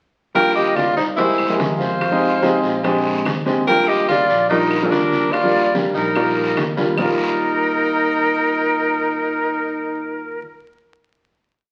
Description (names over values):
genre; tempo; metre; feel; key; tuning
Afro-Cuban jazz; 145 BPM; 4/4; straight; Eb major; A4 = 441 Hz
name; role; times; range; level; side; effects
clear concert grand piano; accompaniment; 0.3-10.4 s; G3 to D5; -23 LUFS; equal; none
fingered electric bass; bass; 0.3-10.4 s; Bb1 to F2; -35 LUFS; equal; none
clear tenor saxophone; melody; 0.4-10.4 s; C4 to Bb4; -23 LUFS; equal; none
breathy bright jazz flute; second line; 0.4-10.4 s; Ab4 to G5; -24 LUFS; equal; none
bongos; percussion; 0.4-7.1 s; none; -31 LUFS; equal; none
congas; percussion; 0.4-7.1 s; none; -33 LUFS; equal; none
guiro; percussion; 0.4-7.1 s; none; -33 LUFS; equal; none
claves; percussion; 0.8-7.1 s; none; -34 LUFS; equal; none
room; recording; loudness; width
wet large studio reverb, RT60 1.1 s; very old 78 rpm record, vinyl crackle; -18 LUFS; mono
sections
0.3-7.0 A section; 7.0-10.3 final chord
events
none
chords
0.3 Ebmaj7; 1.2 C7b13; 2.0 Fm7; 2.8 Bb13; 3.7 Ebmaj7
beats
| 0.35 0.77 1.18 1.60 | 2.01 2.43 2.85 3.26 | 3.68 4.09 4.50 4.92 | 5.33 5.74 6.16 6.57 | 6.98 7.39 7.80 8.21 | 8.63 9.04 9.45 9.86